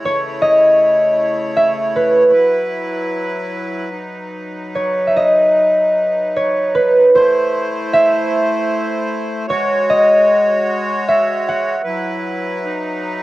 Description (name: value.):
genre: celtic folk, Celtic slow air.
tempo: 76 BPM.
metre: 3/4.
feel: rubato.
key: unclear.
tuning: A4 = 440 Hz.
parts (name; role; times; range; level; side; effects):
concert harp; accompaniment; 0.0-13.2 s; B4 to F#5; -13 LUFS; equal; none.
accordion; sustained chords; 0.0-13.2 s; C#3 to C#5; -22 LUFS; left 1 dB; none.
room: little or no reverb.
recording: dry, close 1970s-style studio recording.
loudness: -13 LUFS.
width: side -17 dB against mid.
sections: 0.0-13.2 A section.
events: harp solo 0.0-13.2.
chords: 0.0 A/C#; 2.3 Bsus4; 3.9 B; 7.1 Am; 9.5 F#sus2; 11.8 Bsus4; 12.7 B.